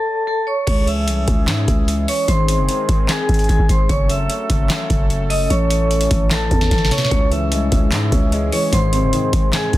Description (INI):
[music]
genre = hip hop, trap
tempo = 149 BPM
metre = 4/4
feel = half-time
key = C# harmonic minor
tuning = A4 = 443 Hz
[part]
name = vibraphone with medium hard mallets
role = melody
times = 0.0-9.8 s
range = G#4 to E6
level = -21 LUFS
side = right 1 dB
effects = low-pass filter, tape echo
[part]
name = warm analog pad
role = sustained chords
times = 0.7-9.8 s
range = D#3 to A4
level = -26 LUFS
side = left 2 dB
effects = chorus
[part]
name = growling 808-style bass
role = bass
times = 0.7-9.8 s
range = F#1 to G#2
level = -19 LUFS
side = equal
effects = none
[part]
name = booming analog drum machine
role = drums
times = 0.7-9.8 s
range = crash cymbal, handclaps, hi-hat, kick drum, snare drum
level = -18 LUFS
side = equal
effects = none
[part]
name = dark baby grand piano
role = accompaniment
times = 7.1-9.8 s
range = G#2 to C#4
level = -22 LUFS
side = equal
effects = low-pass filter
[sound]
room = little or no reverb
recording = dense, heavily limited modern master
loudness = -15 LUFS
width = side -15 dB against mid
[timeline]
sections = 0.7-9.8 A section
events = break 0.0-0.7; drum fill 6.7-7.1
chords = 0.0 A; 0.7 C#m; 2.3 G#; 3.9 F#m; 5.5 A; 7.1 C#m; 8.7 G#